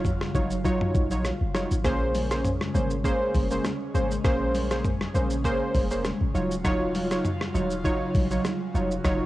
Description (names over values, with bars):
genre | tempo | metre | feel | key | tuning
afrobeats | 100 BPM | 4/4 | swing 55% on 16ths | Bb minor | A4 = 441 Hz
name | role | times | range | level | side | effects
warm analog keys | accompaniment | 0.0-9.3 s | Gb3 to Db5 | -27 LUFS | right 1 dB | chorus, cassette tape
airy breathy pad | sustained chords | 0.0-9.3 s | Db3 to F4 | -33 LUFS | equal | chorus, phaser, cassette tape
clean 808-style bass | bass | 0.0-9.3 s | Eb1 to Bb1 | -29 LUFS | equal | none
dusty soul sampler-style drum kit | drums | 0.0-9.2 s | hi-hat, kick drum, rim click, shaker, toms | -29 LUFS | equal | cassette tape
congas | percussion | 0.2-9.2 s | none | -37 LUFS | left 2 dB | none
room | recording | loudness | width
little or no reverb | home recording on cassette | -23 LUFS | side -16 dB against mid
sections
0.0-9.3 A section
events
none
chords
0.0 Ebm9; 1.8 Bbm9; 6.3 Ebm9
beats
0.05 0.65 1.25 | 1.85 2.45 3.05 3.65 | 4.25 4.85 5.45 6.05 | 6.65 7.25 7.85 8.45 | 9.05